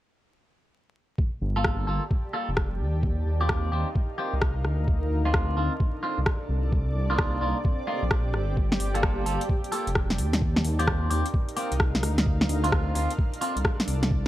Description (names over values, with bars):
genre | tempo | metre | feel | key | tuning
UK garage, two-step garage | 130 BPM | 4/4 | swing 65% on 16ths | G minor | A4 = 441 Hz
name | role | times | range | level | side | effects
electronic kick drum | drums | 1.2-14.2 s | none | -26 LUFS | equal | studio reverb
granular cloud pad | texture | 1.9-14.3 s | C4 to A5 | -34 LUFS | equal | built-in reverb, sidechain pumping
dark detuned saw bass | bass | 1.4-14.3 s | F1 to Eb2 | -26 LUFS | equal | sidechain pumping
clean electric guitar | stabs | 1.6-13.6 s | Bb3 to A4 | -31 LUFS | equal | phaser, dub echo
garage drum kit | drums | 1.6-14.1 s | hi-hat, rim click, snare drum | -27 LUFS | equal | studio reverb
room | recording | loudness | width
little or no reverb | vinyl crackle | -23 LUFS | side -14 dB against mid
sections
1.2-14.3 A section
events
none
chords
1.2 Gm9; 2.8 Eb69; 4.9 Dm7; 6.5 Cm11; 8.6 Gm9; 10.2 Eb69; 12.3 Dm7